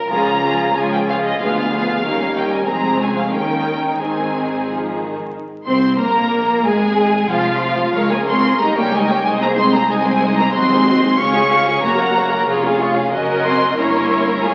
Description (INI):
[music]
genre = quick classical-period movement for string orchestra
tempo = 92 BPM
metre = 2/4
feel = straight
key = Ab major, Db major from 10.5 s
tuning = A4 = 440 Hz
[part]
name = rich symphonic violin section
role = melody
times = 0.0-14.5 s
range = Bb4 to Db6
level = -22 LUFS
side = equal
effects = none
[part]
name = warm symphonic violin section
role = second line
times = 0.0-14.5 s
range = C4 to Ab5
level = -23 LUFS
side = equal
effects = none
[part]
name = rich symphonic viola section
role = accompaniment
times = 0.0-14.5 s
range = Eb3 to Bb4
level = -23 LUFS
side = equal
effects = none
[part]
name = rich symphonic cello section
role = bass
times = 0.1-14.5 s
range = Db2 to Db4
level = -26 LUFS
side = equal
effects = none
[part]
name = rich symphonic double bass section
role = bass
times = 0.1-14.5 s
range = F1 to Eb2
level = -29 LUFS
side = equal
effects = none
[sound]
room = wet recital hall reverb, RT60 1.4 s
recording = very old 78 rpm record, vinyl crackle, nothing above 7.7 kHz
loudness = -17 LUFS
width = mono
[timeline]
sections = 0.0-5.3 A section; 5.3-14.5 B section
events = none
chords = 0.1 Db; 1.4 Ddim7; 2.0 Eb7; 2.7 Fm; 3.3 Eb7; 4.0 Ab; 5.3 N.C.; 6.7 Fm/Ab; 8.0 Bbm7/Db; 8.6 Eb7/Db; 9.3 Ab/C; 10.5 Ab7/Eb; 11.2 Db; 11.8 Gb; 12.5 Db/F; 13.1 Ebm7/Gb; 13.8 Gdim7